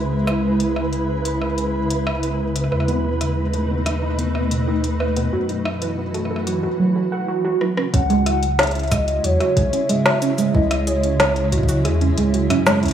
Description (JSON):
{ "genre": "IDM", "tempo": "92 BPM", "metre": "4/4", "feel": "straight", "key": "C# minor", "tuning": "A4 = 439 Hz", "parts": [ { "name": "granular cloud pad", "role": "sustained chords", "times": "0.0-12.9 s", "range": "B2 to F#4", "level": "-24 LUFS", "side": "equal", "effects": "built-in reverb" }, { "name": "warm sub bass", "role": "bass", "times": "0.0-12.9 s", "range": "B1 to F#2", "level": "-23 LUFS", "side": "equal", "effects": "none" }, { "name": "flickering grainy texture", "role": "texture", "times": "0.0-6.6 s", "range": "B4", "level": "-29 LUFS", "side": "right 2 dB", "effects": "built-in reverb" }, { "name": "organic electronic drum kit", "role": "drums", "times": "0.3-12.9 s", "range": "cabasa, hi-hat, rim click, snare drum", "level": "-23 LUFS", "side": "left 1 dB", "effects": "overdrive" }, { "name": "warbly dusty pluck", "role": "arpeggios", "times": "2.7-12.9 s", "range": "B2 to F#5", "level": "-22 LUFS", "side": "right 4 dB", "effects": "chorus, tape echo" }, { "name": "warbly nostalgic lead", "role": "melody", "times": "7.9-12.2 s", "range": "C#5 to F#5", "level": "-23 LUFS", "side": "left 1 dB", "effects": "chorus, tremolo, analog delay" }, { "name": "electronic kick drum", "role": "drums", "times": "7.9-11.7 s", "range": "none", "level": "-20 LUFS", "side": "equal", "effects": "overdrive" } ], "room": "wet echo chamber reverb, RT60 1.7 s, digital ambience", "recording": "echo-heavy mix, small room ambience", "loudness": "-17 LUFS", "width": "side -9 dB against mid", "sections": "0.0-7.9 A section; 7.9-12.9 B section", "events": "drum fill 7.6-7.9", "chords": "0.0 C#m; 2.7 B7/D#; 5.3 F#m7; 7.9 C#m", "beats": "| 0.11 0.76 1.42 2.07 | 2.72 3.37 4.02 4.68 | 5.33 5.98 6.63 7.29 | 7.94 8.59 9.24 9.89 | 10.54 11.20 11.85 12.50" }